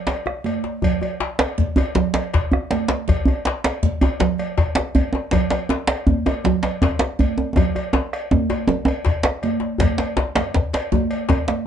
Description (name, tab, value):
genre	west african traditional, West African drum ensemble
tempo	107 BPM (dotted quarters)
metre	12/8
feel	straight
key	none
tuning	none
part	cowbell	percussion	0.1-11.5 s	none	-29 LUFS	left 2 dB	none
part	djembe	percussion	0.1-11.5 s	none	-26 LUFS	left 4 dB	none
part	djembe	percussion	0.1-11.7 s	none	-20 LUFS	right 1 dB	none
part	bombo	percussion	0.3-11.7 s	none	-22 LUFS	left 2 dB	none
part	congas	percussion	0.3-11.7 s	none	-24 LUFS	right 6 dB	none
room	wet small room reverb, RT60 0.5 s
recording	dark, warm production, nothing above 10.3 kHz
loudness	-18 LUFS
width	side -9 dB against mid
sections	0.0-9.8 A section; 9.8-11.7 B section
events	drum fill 7.6-9.8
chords	none